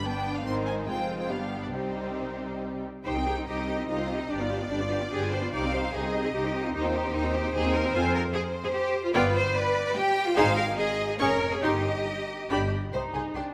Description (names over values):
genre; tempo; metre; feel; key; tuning
quick classical-period movement for string orchestra; 131-152 BPM; 3/4; rubato; C minor; A4 = 440 Hz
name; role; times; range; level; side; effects
rich symphonic violin section; melody; 0.0-13.4 s; B4 to Db6; -40 LUFS; equal; none
rich symphonic violin section; second line; 0.0-13.4 s; D4 to G5; -34 LUFS; equal; none
clear symphonic viola section; accompaniment; 0.0-13.5 s; Eb3 to Ab4; -33 LUFS; equal; none
rich symphonic cello section; bass; 0.0-13.4 s; F2 to D5; -34 LUFS; equal; none
rich symphonic double bass section; bass; 0.0-13.4 s; F1 to F2; -36 LUFS; equal; none
room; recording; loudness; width
moderate concert hall reverb, RT60 2.4 s; none; -28 LUFS; mono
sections
0.0-3.1 A section; 3.1-12.9 B section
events
none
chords
0.5 Ab; 0.9 Fm; 1.3 G7; 1.7 Cm; 4.3 G7; 5.5 Cm; 6.7 Cm/Eb; 7.9 F5; 9.1 G7; 10.4 Ab; 11.2 Db/F; 11.6 Cm/G; 12.5 G; 12.9 Cm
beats
0.05 | 0.45 0.87 1.29 | 1.73 2.18 2.62 | 3.05 3.47 3.88 | 4.29 4.70 5.11 | 5.53 5.93 6.34 | 6.74 7.14 7.54 | 7.94 8.34 8.74 | 9.14 9.55 9.96 | 10.37 10.78 11.19 | 11.62 12.06 12.50 | 12.94 13.36